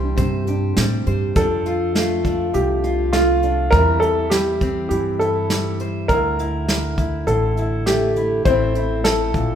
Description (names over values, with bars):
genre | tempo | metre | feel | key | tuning
acoustic folk duo or small band | 102 BPM | 4/4 | straight | F major | A4 = 440 Hz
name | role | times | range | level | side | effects
warm upright piano | melody | 0.0-9.6 s | F4 to C6 | -21 LUFS | equal | none
fingerpicked steel-string acoustic guitar | accompaniment | 0.0-9.6 s | A2 to C5 | -23 LUFS | left 2 dB | none
felt-muted upright piano | arpeggios | 0.0-1.4 s | E3 to G4 | -27 LUFS | right 3 dB | none
upright bass | bass | 0.0-9.6 s | A1 to A2 | -23 LUFS | right 1 dB | none
soft brush drum kit | drums | 0.2-9.5 s | hi-hat, kick drum, snare drum | -23 LUFS | right 1 dB | none
room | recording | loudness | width
moderate recital hall reverb, RT60 1.5 s | recorded in a church or concert hall | -17 LUFS | side -9 dB against mid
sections
0.0-1.4 A section; 1.4-9.6 B section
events
none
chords
0.0 Cadd9; 1.4 F6; 3.7 C/E; 6.1 Dsus2; 8.5 Am